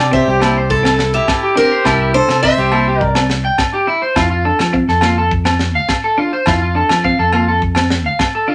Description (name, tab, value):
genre	highlife guitar band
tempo	104 BPM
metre	4/4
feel	straight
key	C mixolydian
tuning	A4 = 439 Hz
part	picked steel-string acoustic guitar	melody	0.0-3.3 s	G4 to E5	-19 LUFS	equal	none
part	warm trumpet	second line	0.0-3.3 s	E4 to C5	-23 LUFS	equal	none
part	fingered electric bass	bass	0.0-8.1 s	C2 to F3	-20 LUFS	equal	none
part	clean electric guitar	accompaniment	0.1-8.5 s	Bb3 to E4	-23 LUFS	equal	none
part	electric guitar at the edge of break-up	arpeggios	0.1-8.5 s	C4 to G5	-19 LUFS	equal	none
part	tight funk drum kit	drums	0.1-8.3 s	kick drum, snare drum	-22 LUFS	equal	none
part	agogo bells	percussion	0.4-8.3 s	none	-23 LUFS	equal	none
room	wet studio ambience, RT60 0.5 s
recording	none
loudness	-14 LUFS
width	mono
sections	0.0-8.5 A section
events	none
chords	0.0 C; 4.2 F